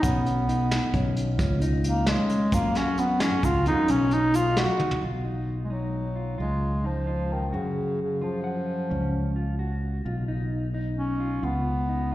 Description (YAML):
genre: progressive instrumental, band music in an uneven meter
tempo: 263 BPM (eighths)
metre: 11/8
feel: straight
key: B lydian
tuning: A4 = 440 Hz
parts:
  - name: warm bass clarinet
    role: melody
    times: 0.0-12.1 s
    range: C#3 to F#4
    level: -26 LUFS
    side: equal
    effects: slapback echo, tape echo
  - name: mellow electric guitar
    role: arpeggios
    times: 0.0-12.1 s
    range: C#4 to F#5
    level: -34 LUFS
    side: left 2 dB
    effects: harmonic tremolo, slapback echo, tape echo
  - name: modern bright fingered electric bass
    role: bass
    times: 0.0-12.1 s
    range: B1 to F#2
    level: -27 LUFS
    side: equal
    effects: none
  - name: vintage brush drum kit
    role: drums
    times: 0.0-5.0 s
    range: hi-hat, kick drum, snare drum, toms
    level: -28 LUFS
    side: equal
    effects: slapback echo
  - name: tube shaker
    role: percussion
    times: 0.0-4.6 s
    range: none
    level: -45 LUFS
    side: right 4 dB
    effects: none
room: small room ambience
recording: live gig heard through the venue's PA, recital hall reverb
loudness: -23 LUFS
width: side -15 dB against mid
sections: 0.0-5.0 A section; 5.0-12.1 B section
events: bass clarinet solo 0.0-5.0; drum fill 4.8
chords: 0.0 Badd9; 1.4 C#sus2; 2.5 F#5; 3.9 Badd9; 5.0 B; 6.4 C#add9; 7.5 F#5; 8.9 C#sus4; 10.1 Badd9; 11.4 C#9